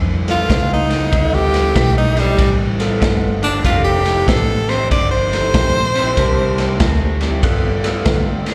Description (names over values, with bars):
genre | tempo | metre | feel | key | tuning
electric blues shuffle | 95 BPM | 4/4 | swing 65% on 8ths | unclear | A4 = 440 Hz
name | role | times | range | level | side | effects
electric guitar through a small old amp | riff | 0.0-8.5 s | F2 to A3 | -26 LUFS | equal | lush chorus, slapback echo
vintage muted fingered electric bass | bass | 0.0-8.5 s | F1 to D3 | -22 LUFS | equal | none
clear tenor saxophone | melody | 0.3-7.0 s | G3 to D5 | -20 LUFS | equal | slapback echo
dark saxophone section | stabs | 0.3-8.4 s | B3 to Bb4 | -27 LUFS | equal | slapback echo, digital delay
raw garage drum kit | drums | 0.3-8.5 s | kick drum, ride cymbal, snare drum | -21 LUFS | equal | none
room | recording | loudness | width
little or no reverb | live gig heard through the venue's PA, recital hall reverb | -16 LUFS | mono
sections
0.0-8.5 A section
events
tenor saxophone solo 0.0-8.5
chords
0.0 G9; 3.6 F9; 6.2 C9; 7.4 G9